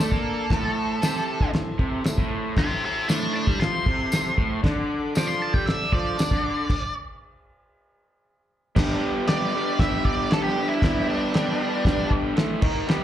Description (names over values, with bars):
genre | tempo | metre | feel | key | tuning
garage rock duo or trio | 116 BPM | 4/4 | straight | unclear | A4 = 440 Hz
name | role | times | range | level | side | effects
octave-fuzz lead guitar | melody | 0.0-12.1 s | D4 to D6 | -27 LUFS | right 1 dB | distortion, slapback echo
combo organ | sustained chords | 0.0-13.0 s | D4 to D5 | -34 LUFS | equal | lush chorus
raw garage guitar | riff | 0.0-13.0 s | G2 to A#4 | -26 LUFS | equal | overdrive, slapback echo
cloth-damped thuddy drum kit | drums | 0.0-13.0 s | crash cymbal, kick drum, snare drum | -24 LUFS | equal | none
tambourine | percussion | 0.0-6.3 s | none | -37 LUFS | left 1 dB | none
room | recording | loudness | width
light reverb | live gig heard through the venue's PA, club reverb | -21 LUFS | side -11 dB against mid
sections
0.0-8.8 A section; 8.8-13.0 B section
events
lead electric guitar solo 0.0-8.8; stop 6.7-8.8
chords
0.0 D5; 0.5 Am; 4.6 D5; 8.8 G; 12.4 A5; 12.6 D#5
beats
0.00 | 0.52 1.03 1.55 2.06 | 2.58 3.09 3.61 4.12 | 4.64 5.15 5.67 6.18 | 6.70 7.21 7.73 8.24 | 8.76 9.28 9.79 10.30 | 10.82 11.33 11.85 12.36 | 12.88